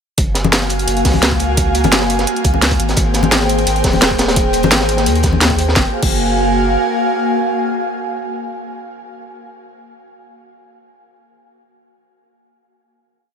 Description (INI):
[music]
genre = liquid drum and bass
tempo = 172 BPM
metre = 4/4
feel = straight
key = F# major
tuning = A4 = 441 Hz
[part]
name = airy breathy pad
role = sustained chords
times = 0.4-9.3 s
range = A#3 to G#5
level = -17 LUFS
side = equal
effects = chorus, sidechain pumping
[part]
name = warm sub bass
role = bass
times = 0.2-6.8 s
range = D#1 to D#2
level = -19 LUFS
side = equal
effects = none
[part]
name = crunchy breakbeat drum kit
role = drums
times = 0.2-5.8 s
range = hi-hat, snare drum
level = -21 LUFS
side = equal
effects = high-pass filter on hats, high-pass filter on snare, high-pass filter on room
[part]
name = drum and bass drum kit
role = drums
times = 0.2-6.1 s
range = crash cymbal, hi-hat, snare drum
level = -18 LUFS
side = equal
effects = overdrive
[part]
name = electronic kick drum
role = drums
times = 0.2-6.1 s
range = none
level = -18 LUFS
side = equal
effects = overdrive
[part]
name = congas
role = percussion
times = 0.4-5.4 s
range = none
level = -19 LUFS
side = left 6 dB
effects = none
[sound]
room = light reverb, studio ambience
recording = none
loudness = -12 LUFS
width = side -7 dB against mid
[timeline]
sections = 0.2-5.8 drop; 5.8-8.6 final chord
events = drop 0.2-5.8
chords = 0.2 F#maj9; 2.8 G#maj9; 5.8 F#maj9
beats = | 0.18 0.53 0.88 1.22 | 1.57 1.92 2.27 2.62 | 2.97 3.32 3.67 4.01 | 4.36 4.71 5.06 5.41 | 5.76 6.11 6.46 6.81 | 7.15 7.50 7.85 8.20